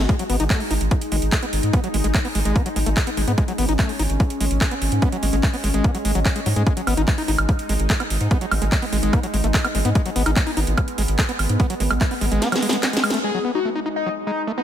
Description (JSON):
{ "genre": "psychedelic trance", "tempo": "146 BPM", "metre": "4/4", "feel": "straight", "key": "G# phrygian", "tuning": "A4 = 440 Hz", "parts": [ { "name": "evolving wavetable pad", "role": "sustained chords", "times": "0.0-14.6 s", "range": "G#3 to F#4", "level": "-27 LUFS", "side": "equal", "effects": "chorus, built-in reverb, sidechain pumping" }, { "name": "screaming distorted acid line", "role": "riff", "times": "0.0-14.6 s", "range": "F#3 to D#4", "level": "-26 LUFS", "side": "moving between left 6 dB and right 6 dB", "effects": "distortion, chorus, auto-pan, sidechain pumping, dub echo" }, { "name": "round analog bass", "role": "bass", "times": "0.0-12.4 s", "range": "G#1 to G#2", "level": "-21 LUFS", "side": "equal", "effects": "none" }, { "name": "electronic kick drum", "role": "drums", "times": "0.1-12.1 s", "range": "none", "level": "-19 LUFS", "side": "equal", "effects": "none" }, { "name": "techno drum kit", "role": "drums", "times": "0.1-13.3 s", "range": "crash cymbal, handclaps, hi-hat, snare drum, woodblock", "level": "-25 LUFS", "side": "right 1 dB", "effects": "low-pass filter on hats, low-pass filter on snare, low-pass filter on perc, low-pass filter on cymbals" }, { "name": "overdriven synth lead", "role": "melody", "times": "13.2-14.6 s", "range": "D#4 to G#4", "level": "-24 LUFS", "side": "left 5 dB", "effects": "distortion, phaser, sidechain pumping, dub echo" } ], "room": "light reverb, digital ambience", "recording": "faint mains hum", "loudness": "-18 LUFS", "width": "side -10 dB against mid", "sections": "0.0-13.2 A section; 13.2-14.6 B section", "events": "drum fill 12.4-13.2; band accent 13.1", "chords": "0.0 G#5" }